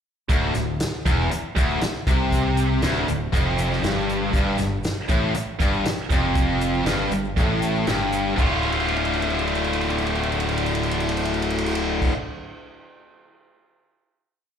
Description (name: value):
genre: classic rock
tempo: 119 BPM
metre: 4/4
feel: straight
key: D minor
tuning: A4 = 440 Hz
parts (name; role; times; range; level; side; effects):
- tight distorted guitar; riff; 0.3-12.1 s; D2 to F4; -25 LUFS; left 9 dB; distortion, slapback echo
- tight distorted guitar; riff; 0.3-12.1 s; D2 to F4; -26 LUFS; right 12 dB; distortion, slapback echo
- growling fingered electric bass; bass; 0.3-12.1 s; D1 to C2; -26 LUFS; equal; overdrive
- vintage drum kit; drums; 0.3-12.1 s; crash cymbal, hi-hat, kick drum, ride cymbal, snare drum; -27 LUFS; equal; none
- tube shaker; percussion; 0.3-12.1 s; none; -47 LUFS; right 6 dB; none
room: light reverb, small room ambience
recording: live gig heard through the venue's PA, club reverb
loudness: -20 LUFS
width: side -8 dB against mid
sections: 0.3-8.4 riff; 8.4-12.4 final chord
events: drum fill 8.6-12.0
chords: 0.3 Dm; 4.3 Fadd9; 8.4 Dm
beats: | 0.29 0.80 1.30 1.81 | 2.32 2.82 3.33 3.83 | 4.34 4.84 5.35 5.85 | 6.36 6.86 7.37 7.87 | 8.38 8.88 9.39 9.90 | 10.40 10.91 11.42 11.93